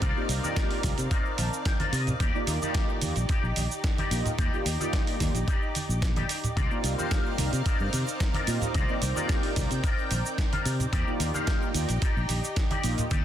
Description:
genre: nu-disco, nu disco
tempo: 110 BPM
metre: 4/4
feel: straight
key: C minor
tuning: A4 = 440 Hz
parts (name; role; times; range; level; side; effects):
- lush unison pad; sustained chords; 0.0-13.2 s; C4 to G5; -35 LUFS; equal; chorus, sidechain pumping
- electric guitar with an envelope filter; riff; 0.0-13.2 s; Eb4 to A5; -34 LUFS; left 5 dB; ensemble chorus, ping-pong delay
- fingered electric bass; bass; 0.0-13.2 s; Bb1 to C3; -29 LUFS; equal; sidechain pumping
- dusty soul sampler-style drum kit; drums; 0.0-13.2 s; hi-hat, shaker, snare drum; -34 LUFS; right 3 dB; none
- electronic kick drum; drums; 0.0-13.2 s; none; -28 LUFS; equal; none
- cabasa and congas; percussion; 0.0-13.2 s; none; -36 LUFS; right 2 dB; none
- mellow synth brass; accompaniment; 0.2-13.0 s; Bb3 to Eb5; -34 LUFS; right 1 dB; chorus, ping-pong delay
room: light reverb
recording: dense, heavily limited modern master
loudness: -25 LUFS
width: side -10 dB against mid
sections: 0.0-13.2 A section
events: clean electric guitar fill 1.1-2.2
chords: 0.0 Cm11; 2.2 Ebmaj7; 6.6 Cm11; 10.9 Ebmaj7

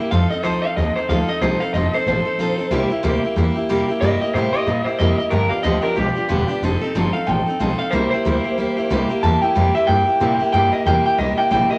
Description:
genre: rockabilly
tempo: 184 BPM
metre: 4/4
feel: swing 59% on 8ths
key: C mixolydian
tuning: A4 = 440 Hz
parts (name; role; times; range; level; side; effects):
- picked steel-string acoustic guitar; accompaniment; 0.0-11.8 s; G2 to A4; -24 LUFS; equal; none
- electric guitar through a small old amp; melody; 0.1-11.8 s; G4 to A5; -23 LUFS; equal; warbly pitch drift
- upright bass; bass; 0.1-11.7 s; E1 to Bb2; -24 LUFS; equal; none
room: moderate club reverb, RT60 0.9 s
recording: none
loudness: -19 LUFS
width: mono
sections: 0.0-10.5 A section; 10.5-11.8 A section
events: none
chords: 0.1 F7; 2.7 C7; 5.3 G7; 6.6 F7; 7.9 C7

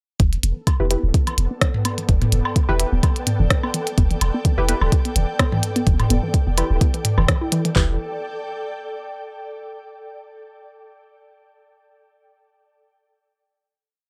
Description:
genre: minimal techno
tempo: 127 BPM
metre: 4/4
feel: swing 55% on 16ths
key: E minor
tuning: A4 = 440 Hz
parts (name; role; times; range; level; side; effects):
- hollow square pluck; riff; 0.2-8.0 s; E3 to E4; -29 LUFS; equal; chorus, sidechain pumping, tape echo
- punchy sub bass; bass; 0.2-8.0 s; D1 to E1; -22 LUFS; equal; sidechain pumping
- minimal click drum kit; drums; 0.2-7.9 s; handclaps, kick drum; -21 LUFS; equal; none
- minimal click drum kit; drums; 0.2-7.7 s; hi-hat, rim click; -25 LUFS; equal; none
- ethereal airy pad; texture; 1.1-9.6 s; A4 to G5; -34 LUFS; equal; ensemble chorus, built-in reverb, sidechain pumping
- pulsing gated texture; texture; 0.5-7.8 s; B3 to B4; -39 LUFS; equal; chorus, built-in reverb, sidechain pumping
- electronic woodblock and toms; percussion; 0.7-7.3 s; none; -27 LUFS; equal; none
- filtered dub chord stab; stabs; 0.8-7.9 s; E4 to B4; -29 LUFS; equal; chorus, cassette tape, tape echo
room: little or no reverb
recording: dry, gritty hardware recording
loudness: -20 LUFS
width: mono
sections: 0.2-7.8 groove; 7.8-9.6 final chord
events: filter sweep on synth arpeggio sound 0.2-7.8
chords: 0.2 Em

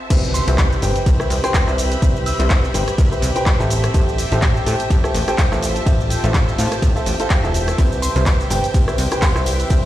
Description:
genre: piano house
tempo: 125 BPM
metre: 4/4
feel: swing 56% on 16ths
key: C major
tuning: A4 = 438 Hz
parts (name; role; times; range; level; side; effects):
- analog string pad; sustained chords; 0.0-9.9 s; C4 to E6; -30 LUFS; left 1 dB; ensemble chorus, sidechain pumping
- clear upright piano; riff; 0.0-9.9 s; F4 to G5; -23 LUFS; equal; sidechain pumping, tape echo
- rich chamber string section; texture; 0.0-9.9 s; C4 to B5; -29 LUFS; right 1 dB; sidechain pumping
- plucky analog bass; bass; 0.1-9.9 s; E1 to A2; -20 LUFS; equal; sidechain pumping
- electronic kick drum; drums; 0.1-9.8 s; none; -16 LUFS; equal; none
- house drum kit; drums; 0.1-9.8 s; crash cymbal, handclaps, hi-hat, ride cymbal, rim click, shaker; -25 LUFS; equal; none
- impact; sound effects; 0.1-2.0 s; none; -27 LUFS; equal; none
- glassy synth bell; melody; 0.3-2.6, 8.0-9.9 s; C6 to E6; -29 LUFS; right 1 dB; chorus, tape echo
- tambourine; percussion; 7.8-9.9 s; none; -36 LUFS; right 4 dB; none
room: digital ambience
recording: played on a big sound system in a bare room, stone room reverb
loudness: -15 LUFS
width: side -14 dB against mid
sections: 0.1-9.9 A section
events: drop 0.1-9.9; impact 0.1-2.0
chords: 0.1 Cmaj7; 3.7 Am7; 5.6 Fmaj7/A; 7.8 Cmaj7

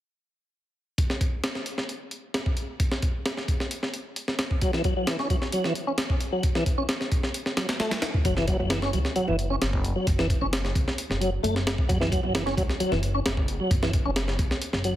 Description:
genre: breakbeat, breaks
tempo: 132 BPM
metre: 4/4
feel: straight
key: F# minor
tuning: A4 = 440 Hz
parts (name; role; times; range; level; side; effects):
- breakbeat sampler-style drum kit; drums; 1.0-15.0 s; hi-hat, kick drum, snare drum; -26 LUFS; equal; none
- tonewheel organ; riff; 4.6-14.9 s; E3 to C#4; -28 LUFS; equal; chorus vibrato, slow rotary speaker, tube saturation, vintage 12-bit sampler grit, ping-pong delay
- upright bass; bass; 8.2-15.0 s; F#1 to C#2; -29 LUFS; equal; none
room: light reverb, digital ambience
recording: heavily compressed radio sound, multiband compression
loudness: -24 LUFS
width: side -13 dB against mid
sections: 1.0-8.3 A section; 8.3-15.0 B section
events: none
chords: 1.0 N.C.; 8.3 F#5

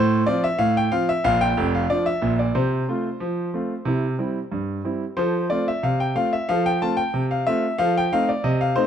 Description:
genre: ragtime piano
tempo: 92 BPM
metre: 2/4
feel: straight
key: F major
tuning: A4 = 440 Hz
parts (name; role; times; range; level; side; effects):
- clear concert grand piano; solo; 0.0-8.9 s; F1 to A5; -20 LUFS; equal; none
room: small room ambience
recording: dry, close 1970s-style studio recording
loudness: -20 LUFS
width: side -8 dB against mid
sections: 0.0-8.9 A section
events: none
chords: 0.0 F/A; 1.2 Bb; 2.6 F/C; 3.9 C; 5.2 F; 7.8 F7

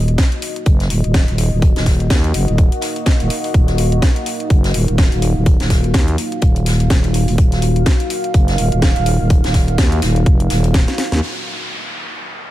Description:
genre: bass house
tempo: 125 BPM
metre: 4/4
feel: swing 58% on 16ths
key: Eb minor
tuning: A4 = 440 Hz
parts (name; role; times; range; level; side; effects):
- deep dark ambient pad; sustained chords; 0.0-12.5 s; Bb3 to F5; -23 LUFS; equal; chorus, built-in reverb, sidechain pumping
- growling FM bass; bass; 0.0-11.2 s; Eb1 to Eb2; -16 LUFS; equal; tube saturation, sidechain pumping
- garage drum kit; drums; 0.1-11.2 s; hi-hat, snare drum; -23 LUFS; equal; low-pass filter on hats, low-pass filter on snare
- electronic kick drum; drums; 0.2-10.9 s; none; -13 LUFS; equal; none
- jazz brush drum kit; drums; 0.2-11.1 s; hi-hat, snare drum; -29 LUFS; left 1 dB; sidechain pumping on hats, high-pass filter on hats, high-pass filter on snare, high-pass filter on room
- downlifter; sound effects; 11.2-12.5 s; none; -25 LUFS; equal; none
room: small room ambience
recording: none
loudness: -13 LUFS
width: side -15 dB against mid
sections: 0.0-11.2 A section; 11.2-12.5 B section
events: drum fill 10.9-11.2; band accent 11.1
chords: 0.0 Ebm

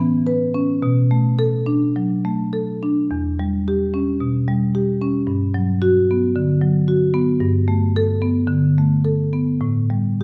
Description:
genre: classical, contemporary piece for solo marimba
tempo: 102-114 BPM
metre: 4/4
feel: rubato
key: unclear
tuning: A4 = 440 Hz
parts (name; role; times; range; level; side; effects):
- marimba with medium mallets; solo; 0.0-10.2 s; E2 to B4; -19 LUFS; equal; none
room: moderate recital hall reverb, RT60 1.3 s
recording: faint mains hum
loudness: -19 LUFS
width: mono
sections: 0.0-10.2 A section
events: none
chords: 0.0 Aadd9 (rootless); 0.8 Bm7; 3.1 Em6; 5.3 Gmaj7; 7.4 Gadd9; 9.6 A7(no3)

